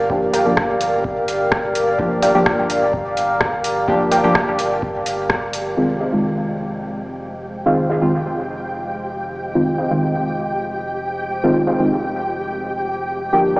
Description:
dub techno; 127 BPM; 4/4; straight; F dorian; A4 = 439 Hz
warbly tape-like pad; sustained chords; 0.0-13.6 s; Ab3 to G5; -22 LUFS; equal; chorus, built-in reverb, phaser, sidechain pumping
deep mellow chord stab; stabs; 0.0-13.6 s; Eb3 to G4; -20 LUFS; equal; chorus, phaser, sidechain pumping, dub echo
soft dub sub bass; bass; 0.0-13.6 s; F1 to G1; -35 LUFS; equal; sidechain pumping
electronic kick drum; drums; 0.1-5.4 s; -29 LUFS; equal
warbly dusty pluck; riff; 0.3-13.6 s; Ab4 to G5; -25 LUFS; equal
booming analog drum machine; drums; 0.3-5.6 s; hi-hat, rim click; -22 LUFS; equal; dub echo
flickering grainy texture; texture; 6.5-13.6 s; G4 to G5; -26 LUFS; equal; built-in reverb, sidechain pumping
moderate huge ambient reverb, RT60 8.1 s; played on a big sound system in a bare room, stone room reverb, small speaker sound; -17 LUFS; side -22 dB against mid
0.0-5.8 A section; 5.8-13.6 B section
band accent 5.3; filter sweep on ambient pad 5.8-13.6
0.0 Gm7; 5.8 Fm7

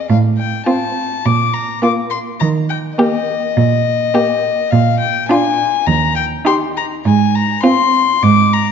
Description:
quick classical-period movement for string quartet; 103 BPM; 4/4; rubato; Eb major; A4 = 438 Hz
rich violin; melody; 0.0-8.7 s; Eb5 to D6; -16 LUFS; left 8 dB
rich cello; bass; 0.1-8.7 s; Eb2 to Eb3; -16 LUFS; right 5 dB
rich violin; second line; 0.7-8.1 s; F4 to G4; -22 LUFS; left 2 dB
warm viola; accompaniment; 0.7-8.1 s; Bb3 to Eb4; -20 LUFS; right 2 dB
wet concert hall reverb, RT60 2.3 s; dark, warm production, nothing above 7.5 kHz; -12 LUFS; side -7 dB against mid
0.0-8.7 A section
0.1 F/A; 1.3 Bb5; 2.4 Eb; 4.7 Bb7; 5.9 Eb; 7.0 Fm/Ab

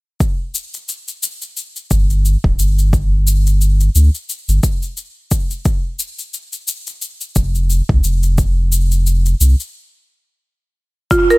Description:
organic downtempo; 88 BPM; 4/4; swing 56% on 16ths; A4 = 440 Hz
electronic kick drum; drums; 0.2-11.3 s; -17 LUFS; equal
shaker; drums; 0.2-11.4 s; -24 LUFS; left 3 dB
warm sub bass; bass; 1.9-9.6 s; D1 to D2; -13 LUFS; equal; tube saturation
marimba with medium mallets; arpeggios; 11.1-11.4 s; F4 to Bb4; -10 LUFS; right 2 dB; vintage 12-bit sampler grit
little or no reverb; bright 1980s-style digital production; -14 LUFS; side -23 dB against mid
0.2-11.1 A section
stop 9.7-11.1
0.2 G5; 5.7 F5

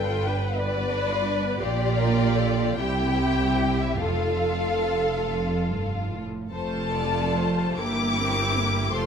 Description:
classical, slow romantic movement for string orchestra; 49 BPM (dotted quarters); 6/8; uneven beats, rubato; F major; A4 = 440 Hz
warm symphonic violin section; melody; 0.0-9.1 s; D5 to D6; -29 LUFS; left 5 dB
clear symphonic violin section; second line; 0.0-9.1 s; G3 to D5; -30 LUFS; left 3 dB
clear symphonic viola section; accompaniment; 0.0-9.1 s; A3 to B4; -30 LUFS; right 1 dB
rich symphonic double bass section; bass; 0.0-9.1 s; F1 to C2; -29 LUFS; right 4 dB
warm symphonic cello section; bass; 0.0-9.1 s; F2 to C3; -28 LUFS; right 2 dB
moderate concert hall reverb, RT60 2.1 s; -22 LUFS; side -7 dB against mid
0.0-6.5 A section; 6.5-9.1 B section
0.0 G7; 1.6 Gm7/Bb; 2.8 C; 4.0 F; 7.8 Edim/G

